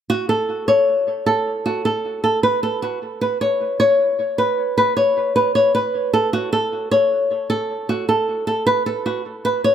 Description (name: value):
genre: hip hop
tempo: 154 BPM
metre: 4/4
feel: half-time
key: unclear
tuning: A4 = 441 Hz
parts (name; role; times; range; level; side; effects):
- flamenco guitar; melody; 0.1-9.7 s; F#4 to C#5; -17 LUFS; equal; analog delay
room: moderate spring reverb, RT60 2.0 s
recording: echo-heavy mix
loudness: -17 LUFS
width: side -9 dB against mid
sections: 0.1-9.7 A section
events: none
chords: none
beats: | 0.10 0.49 0.88 1.27 | 1.66 2.04 2.43 2.82 | 3.21 3.60 3.99 4.38 | 4.77 5.16 5.55 5.94 | 6.33 6.72 7.11 7.50 | 7.89 8.28 8.67 9.06 | 9.45